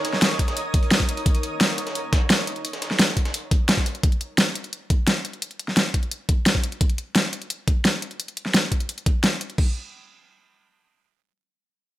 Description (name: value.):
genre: dark technical drum and bass.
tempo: 173 BPM.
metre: 4/4.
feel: straight.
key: unclear.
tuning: A4 = 440 Hz.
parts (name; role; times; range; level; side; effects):
breakbeat sampler-style drum kit; drums; 0.0-3.9 s; hi-hat, snare drum; -31 LUFS; equal; high-pass filter on snare, studio ambience, high-pass filter on hats, high-pass filter on room.
dubstep drum kit; drums; 0.0-9.6 s; hi-hat, snare drum; -20 LUFS; equal; overdrive, studio ambience.
granular cloud pad; texture; 0.0-1.3 s; Eb4 to Eb6; -30 LUFS; right 1 dB; built-in reverb, sidechain pumping.
dubstep drum kit; drums; 0.4-9.7 s; crash cymbal, kick drum; -21 LUFS; equal; overdrive, studio ambience.
room: little or no reverb.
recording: none.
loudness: -20 LUFS.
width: side -15 dB against mid.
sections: 0.0-9.6 A section; 9.6-12.0 B section.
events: none.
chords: 0.0 Eb5; 9.6 N.C..